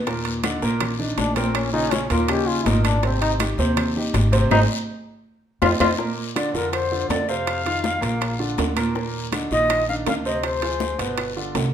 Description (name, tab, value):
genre	Afro-Cuban jazz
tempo	162 BPM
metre	4/4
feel	straight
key	Bb major from 6.0 s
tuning	A4 = 440 Hz
part	upright bass	bass	0.0-11.7 s	G1 to F2	-25 LUFS	equal	none
part	warm concert grand piano	accompaniment	0.1-11.7 s	Bb2 to C5	-26 LUFS	right 1 dB	none
part	bongos	percussion	0.1-11.7 s	none	-32 LUFS	left 8 dB	none
part	congas	percussion	0.1-11.7 s	none	-31 LUFS	equal	none
part	guiro	percussion	0.1-11.7 s	none	-34 LUFS	left 7 dB	none
part	timbales	percussion	0.1-11.7 s	none	-29 LUFS	right 9 dB	none
part	claves	percussion	0.4-11.4 s	none	-34 LUFS	right 6 dB	none
part	clear trombone	second line	1.2-5.9 s	C4 to G4	-23 LUFS	left 4 dB	none
part	breathy bright concert flute	melody	6.4-11.1 s	Bb4 to F5	-23 LUFS	left 2 dB	none
room	moderate large studio reverb, RT60 1.0 s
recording	minimal, uncompressed stereo recording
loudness	-19 LUFS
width	side -9 dB against mid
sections	0.0-6.0 A section; 6.0-11.7 B section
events	trombone solo 0.0-6.0; band accent 4.5-6.0; drum fill 4.9-6.0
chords	0.1 Eb5; 1.6 Bbm; 2.3 Eb5; 3.0 Abmaj7; 4.5 Ab; 5.3 F5; 6.0 Bbadd9; 7.5 F5; 8.2 Bb; 9.0 Ebsus2; 10.4 Dm7b5; 11.2 G7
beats	| 0.07 0.44 0.81 1.18 | 1.55 1.92 2.29 2.66 | 3.03 3.40 3.77 4.14 | 4.51 4.88 5.25 5.62 | 5.99 6.36 6.73 7.10 | 7.47 7.84 8.21 8.59 | 8.96 9.33 9.70 10.07 | 10.44 10.81 11.18 11.55